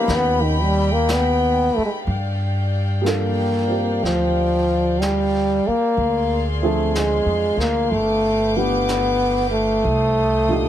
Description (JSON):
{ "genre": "jazz ballad", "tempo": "62 BPM", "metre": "4/4", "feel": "swing 68% on 8ths", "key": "G minor", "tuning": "A4 = 440 Hz", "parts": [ { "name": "breathy trombone", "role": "melody", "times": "0.0-10.7 s", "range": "D#3 to B3", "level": "-19 LUFS", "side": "equal", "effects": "plate reverb" }, { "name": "dark upright piano", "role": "accompaniment", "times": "0.0-10.7 s", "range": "Bb2 to B4", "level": "-26 LUFS", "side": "right 2 dB", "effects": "none" }, { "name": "dark studio string section", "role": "sustained chords", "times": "0.0-10.7 s", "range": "Eb4 to Eb6", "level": "-28 LUFS", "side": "equal", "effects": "none" }, { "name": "upright bass", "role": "bass", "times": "0.1-10.7 s", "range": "G1 to G2", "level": "-23 LUFS", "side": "equal", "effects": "none" }, { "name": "vintage brush drum kit", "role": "drums", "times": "0.1-10.7 s", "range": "brushed snare drum, hi-hat, snare drum", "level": "-32 LUFS", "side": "equal", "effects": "none" } ], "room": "moderate studio ambience, RT60 0.5 s", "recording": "heavily compressed radio sound", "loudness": "-17 LUFS", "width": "side -11 dB against mid", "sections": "0.0-2.1 A section; 2.1-10.7 B section", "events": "trombone solo 0.0-2.1", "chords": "0.0 Gaug7; 2.1 Gm7; 6.0 Dm7b5; 7.9 G7; 9.8 Cm11" }